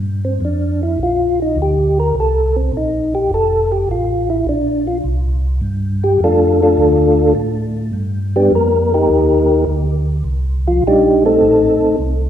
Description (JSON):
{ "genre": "soul jazz organ trio", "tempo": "104 BPM", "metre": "4/4", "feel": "swing 69% on 8ths", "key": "G minor", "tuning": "A4 = 441 Hz", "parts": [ { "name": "mellow tonewheel organ", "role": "bass", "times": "0.0-12.3 s", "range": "F1 to A2", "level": "-18 LUFS", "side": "equal", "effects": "chorus vibrato, slow rotary speaker" }, { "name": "percussive tonewheel organ", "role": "melody", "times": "0.2-12.0 s", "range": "F3 to Bb4", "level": "-14 LUFS", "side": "equal", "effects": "slow rotary speaker, chorus vibrato" } ], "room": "moderate recital hall reverb, RT60 1.6 s", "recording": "recorded in a church or concert hall", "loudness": "-13 LUFS", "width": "side -10 dB against mid", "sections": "0.0-12.3 A section", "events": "tonewheel organ solo 0.0-12.3", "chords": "0.0 Gm7; 2.1 Eb5; 3.3 F; 4.5 Bbmaj9; 6.8 Dm; 7.9 G7(no3); 9.1 Cm9; 11.4 Adim" }